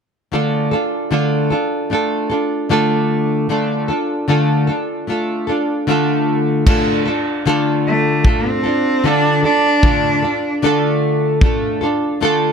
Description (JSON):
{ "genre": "acoustic pop", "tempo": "76 BPM", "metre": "4/4", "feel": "swing 55% on 16ths", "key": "unclear", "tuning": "A4 = 441 Hz", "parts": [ { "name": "nylon-string guitar", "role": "accompaniment", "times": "0.3-12.5 s", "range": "D3 to A4", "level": "-16 LUFS", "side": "equal", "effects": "double-tracked left and right" }, { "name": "modern studio drum kit", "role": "drums", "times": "6.7-11.6 s", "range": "crash cymbal, kick drum", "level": "-17 LUFS", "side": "equal", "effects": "none" }, { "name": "rich cello", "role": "melody", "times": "7.9-10.6 s", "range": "A3 to D4", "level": "-16 LUFS", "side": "right 2 dB", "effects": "none" } ], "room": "light reverb", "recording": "none", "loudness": "-14 LUFS", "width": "side -6 dB against mid", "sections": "0.3-6.7 A section; 6.7-12.5 B section", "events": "none", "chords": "0.3 Dm" }